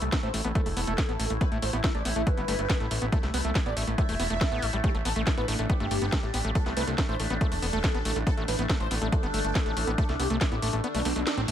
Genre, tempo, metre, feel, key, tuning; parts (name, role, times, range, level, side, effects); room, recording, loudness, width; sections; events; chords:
psychedelic trance; 140 BPM; 4/4; straight; A minor; A4 = 441 Hz
wide unison lead; melody; 0.0-11.5 s; A3 to E5; -33 LUFS; equal; phaser, sidechain pumping, dub echo
overtone-sweeping drone; sustained chords; 0.0-11.5 s; A3 to E4; -35 LUFS; left 1 dB; chorus, built-in reverb, phaser, sidechain pumping
overdriven acid bass; riff; 0.0-11.5 s; G3 to C4; -34 LUFS; equal; distortion, auto-pan, sidechain pumping, dub echo
fat analog bass; bass; 0.0-11.5 s; E1 to C2; -30 LUFS; equal
drum and bass drum kit; drums; 0.0-11.5 s; hi-hat, snare drum; -33 LUFS; equal
electronic kick drum; drums; 0.1-10.5 s; -26 LUFS; equal
digital ambience; -25 LUFS; side -10 dB against mid
0.0-11.5 A section
kick drops out 10.8-11.5; band accent 11.3
0.0 A5